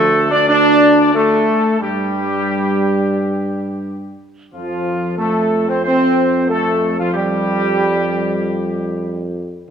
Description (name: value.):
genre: classical, ceremonial fanfare.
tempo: 86-94 BPM.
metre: 4/4.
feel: straight.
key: F major.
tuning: A4 = 440 Hz.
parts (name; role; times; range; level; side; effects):
mellow trumpet section; melody; 0.0-9.3 s; F4 to D5; -21 LUFS; left 1 dB; none.
clear trombone section; sustained chords; 0.0-9.3 s; F3 to D4; -17 LUFS; right 2 dB; none.
warm French horn section; sustained chords; 0.0-9.4 s; F3 to D4; -21 LUFS; left 5 dB; none.
clear tuba; bass; 0.0-9.7 s; D2 to G2; -22 LUFS; right 1 dB; none.
room: wet scoring stage reverb, RT60 2.0 s.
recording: none.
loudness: -14 LUFS.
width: side -7 dB against mid.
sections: 0.0-9.7 A section.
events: none.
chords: 0.0 D5; 1.8 N.C.; 4.5 Fsus2.